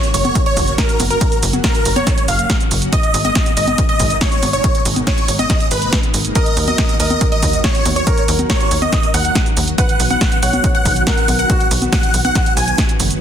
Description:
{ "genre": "uplifting trance", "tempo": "140 BPM", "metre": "4/4", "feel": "straight", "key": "unclear", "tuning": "A4 = 440 Hz", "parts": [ { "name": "big supersaw lead", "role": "melody", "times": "0.0-12.8 s", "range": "Bb4 to Ab5", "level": "-20 LUFS", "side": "equal", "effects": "phaser, sidechain pumping, ping-pong delay" }, { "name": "wide unison pluck", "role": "second line", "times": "0.0-12.8 s", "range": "Bb4 to Ab5", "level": "-27 LUFS", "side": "right 1 dB", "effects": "sidechain pumping, ping-pong delay" }, { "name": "analog string pad", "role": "sustained chords", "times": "0.0-13.2 s", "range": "Cb3 to Gb4", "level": "-26 LUFS", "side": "equal", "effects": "ensemble chorus, sidechain pumping" }, { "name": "punchy analog drum machine", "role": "drums", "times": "0.0-13.2 s", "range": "congas, hi-hat, shaker, snare drum", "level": "-20 LUFS", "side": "right 1 dB", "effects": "none" }, { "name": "tight sequencer bass", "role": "bass", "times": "0.1-13.2 s", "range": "Gb1 to Eb2", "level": "-20 LUFS", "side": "equal", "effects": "sidechain pumping" }, { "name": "electronic kick drum", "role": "drums", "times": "0.4-12.9 s", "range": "none", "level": "-17 LUFS", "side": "equal", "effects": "none" }, { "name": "warm grand piano", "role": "second line", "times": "6.4-13.1 s", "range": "F#4 to Db5", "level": "-25 LUFS", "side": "equal", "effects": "ping-pong delay" } ], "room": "light reverb, digital ambience", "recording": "dense, heavily limited modern master", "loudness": "-13 LUFS", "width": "side -9 dB against mid", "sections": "0.0-13.2 A section", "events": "none", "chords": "0.0 Gb; 2.9 Abmadd9; 6.4 Ebm; 9.8 B" }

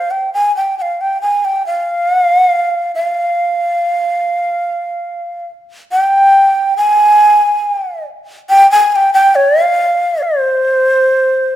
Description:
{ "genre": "japanese traditional, Japanese chamber music", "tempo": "70 BPM", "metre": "4/4", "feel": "rubato", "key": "unclear", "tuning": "A4 = 439 Hz", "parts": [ { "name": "breathy shakuhachi", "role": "solo", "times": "0.0-11.6 s", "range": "C5 to Ab5", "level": "-10 LUFS", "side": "equal", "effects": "none" } ], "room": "moderate recital hall reverb, RT60 1.5 s", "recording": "none", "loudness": "-10 LUFS", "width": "side -12 dB against mid", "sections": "0.0-11.6 A section", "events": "none", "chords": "none" }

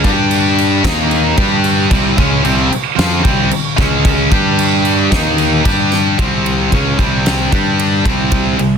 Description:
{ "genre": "hard rock", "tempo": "112 BPM", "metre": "4/4", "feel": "straight", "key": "C minor", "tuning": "A4 = 440 Hz", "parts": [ { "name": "overdriven electric guitar", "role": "riff", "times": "0.0-8.8 s", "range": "C3 to G4", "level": "-17 LUFS", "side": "left 15 dB", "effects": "none" }, { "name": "tight distorted guitar", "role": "riff", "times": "0.0-8.8 s", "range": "C3 to G4", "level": "-17 LUFS", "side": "right 15 dB", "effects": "distortion" }, { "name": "fuzz picked electric bass", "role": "bass", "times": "0.0-8.8 s", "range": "C2 to G2", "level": "-17 LUFS", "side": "equal", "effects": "overdrive" }, { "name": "huge arena drum kit", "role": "drums", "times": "0.0-8.7 s", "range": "crash cymbal, kick drum, ride cymbal, snare drum", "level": "-16 LUFS", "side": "equal", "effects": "none" } ], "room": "small room ambience", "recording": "dense, heavily limited modern master", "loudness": "-11 LUFS", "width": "side -7 dB against mid", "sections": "0.0-6.2 A section; 6.2-8.8 B section", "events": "none", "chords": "0.0 G5; 0.8 Eb5; 1.4 G5; 1.9 C5; 3.8 Db5; 4.3 G5; 5.1 Eb5; 5.6 G5; 6.2 C5; 7.5 G5; 8.0 C5" }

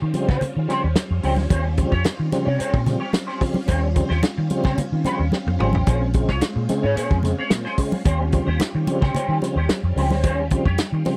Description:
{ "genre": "funk", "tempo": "110 BPM", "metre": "4/4", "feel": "straight", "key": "unclear", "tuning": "A4 = 445 Hz", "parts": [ { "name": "semi-hollow electric guitar", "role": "accompaniment", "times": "0.0-11.0 s", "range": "Db4 to Db5", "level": "-29 LUFS", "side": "equal", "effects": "wah, ensemble chorus" }, { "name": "string machine, violins", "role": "sustained chords", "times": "0.0-11.2 s", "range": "G3 to F4", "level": "-34 LUFS", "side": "equal", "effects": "phaser, ensemble chorus" }, { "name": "vintage muted fingered electric bass", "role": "bass", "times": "0.0-11.0 s", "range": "Ab1 to Eb3", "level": "-24 LUFS", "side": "equal", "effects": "none" }, { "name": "tonewheel organ", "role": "stabs", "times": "0.1-11.2 s", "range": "Bb2 to C4", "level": "-26 LUFS", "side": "equal", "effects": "overdrive, chorus vibrato, stopped rotary speaker, tube saturation" }, { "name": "warm soul drum kit", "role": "drums", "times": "0.1-11.2 s", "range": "hi-hat, kick drum, snare drum, toms", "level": "-25 LUFS", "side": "equal", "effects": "none" }, { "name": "congas", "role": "percussion", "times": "0.1-11.2 s", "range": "none", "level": "-28 LUFS", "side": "equal", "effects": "none" } ], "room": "little or no reverb", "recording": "dry, close 1970s-style studio recording", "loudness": "-21 LUFS", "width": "mono", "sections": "0.0-11.2 A section", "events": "drum fill 5.3-5.9", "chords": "0.0 Eb13; 5.9 Bbm9; 8.1 Eb13" }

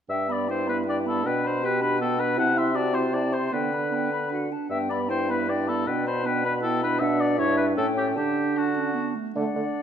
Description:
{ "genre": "quick classical-period movement for wind quintet", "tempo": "156 BPM", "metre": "3/4", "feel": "rubato", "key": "G major", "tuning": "A4 = 439 Hz", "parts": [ { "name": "silver concert flute", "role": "melody", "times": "0.1-9.8 s", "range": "E5 to C6", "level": "-32 LUFS", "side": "left 6 dB", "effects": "none" }, { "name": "warm oboe", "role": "second line", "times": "0.1-9.8 s", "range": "F#4 to F#5", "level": "-27 LUFS", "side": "left 3 dB", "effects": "none" }, { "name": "warm clarinet", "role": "accompaniment", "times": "0.1-9.8 s", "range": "A3 to F#4", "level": "-31 LUFS", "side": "right 7 dB", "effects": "none" }, { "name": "warm bassoon", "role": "bass", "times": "0.1-9.6 s", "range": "G2 to D3", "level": "-29 LUFS", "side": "right 2 dB", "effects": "none" }, { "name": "warm French horn", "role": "accompaniment", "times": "0.5-9.6 s", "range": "A3 to G4", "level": "-30 LUFS", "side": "equal", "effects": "none" } ], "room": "moderate recital hall reverb, RT60 1.8 s", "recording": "dark, warm production", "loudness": "-22 LUFS", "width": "side -8 dB against mid", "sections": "0.1-9.3 A section", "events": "none", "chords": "0.1 G; 1.2 G/B; 2.4 Am/C; 3.5 G/D; 4.3 D; 4.7 G; 5.9 G/B; 7.0 Bm; 7.4 Em7/G; 7.8 A7; 8.2 D" }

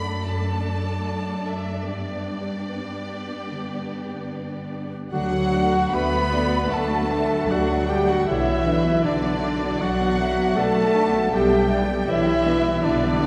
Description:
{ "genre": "cinematic, emotional film score for orchestra", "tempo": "72-80 BPM", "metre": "4/4", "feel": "rubato", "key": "unclear", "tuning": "A4 = 444 Hz", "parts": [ { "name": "warm symphonic violin section", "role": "melody", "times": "0.0-13.3 s", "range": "D5 to B5", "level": "-37 LUFS", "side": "equal", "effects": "none" }, { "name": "warm symphonic violin section", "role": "second line", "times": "0.0-13.3 s", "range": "G4 to B5", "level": "-32 LUFS", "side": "equal", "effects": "none" }, { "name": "warm symphonic viola section", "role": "accompaniment", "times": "0.0-13.3 s", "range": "D3 to F#4", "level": "-33 LUFS", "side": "equal", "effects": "none" }, { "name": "concert harp", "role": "arpeggios", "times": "0.0-13.3 s", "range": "F#2 to D5", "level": "-36 LUFS", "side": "equal", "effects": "none" }, { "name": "rich symphonic cello section", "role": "bass", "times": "0.0-13.3 s", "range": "F#2 to B3", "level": "-30 LUFS", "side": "equal", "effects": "none" }, { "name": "hollow concert flute", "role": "second line", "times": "5.1-13.3 s", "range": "B4 to F#5", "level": "-32 LUFS", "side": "equal", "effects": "none" }, { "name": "warm cor anglais", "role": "second line", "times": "5.1-13.3 s", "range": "D4 to B4", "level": "-32 LUFS", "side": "equal", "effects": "none" }, { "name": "dark French horn section", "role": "sustained chords", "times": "5.1-13.3 s", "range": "D4 to B4", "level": "-26 LUFS", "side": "equal", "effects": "none" }, { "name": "rich symphonic double bass section", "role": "bass", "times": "5.1-13.3 s", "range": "B1 to D2", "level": "-30 LUFS", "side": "equal", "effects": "none" } ], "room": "wet church reverb, RT60 2.7 s", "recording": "none", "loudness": "-23 LUFS", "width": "mono", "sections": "0.0-5.1 A section; 5.1-13.3 A section", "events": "none", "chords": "0.0 D/F#; 1.9 G; 5.1 D; 8.3 Bm; 11.3 G/B" }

